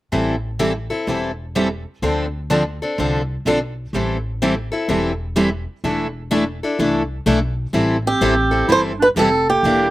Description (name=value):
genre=acoustic string swing (jazz manouche)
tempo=126 BPM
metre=4/4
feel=swing 65% on 8ths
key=A minor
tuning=A4 = 441 Hz
part: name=picked steel-string acoustic guitar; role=accompaniment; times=0.1-9.9 s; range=D3 to A4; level=-20 LUFS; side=left 3 dB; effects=none
part: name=picked steel-string acoustic guitar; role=accompaniment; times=0.1-9.9 s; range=D3 to Bb4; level=-22 LUFS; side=right 3 dB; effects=none
part: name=upright bass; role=bass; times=0.1-9.9 s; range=E1 to D2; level=-25 LUFS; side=equal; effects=none
part: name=picked swing-style acoustic guitar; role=melody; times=8.1-9.9 s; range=G4 to C5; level=-16 LUFS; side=right 2 dB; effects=slapback echo
part: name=growling clarinet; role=second line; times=8.1-9.9 s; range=Bb3 to E4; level=-23 LUFS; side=right 3 dB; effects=none
room=little or no reverb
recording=recorded outdoors, with no room sound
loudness=-17 LUFS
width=side -16 dB against mid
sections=0.1-7.7 A section; 7.7-9.9 B section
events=none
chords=0.1 Am7; 2.0 Dm7; 3.9 Am7; 5.8 E7sus4; 7.7 Am7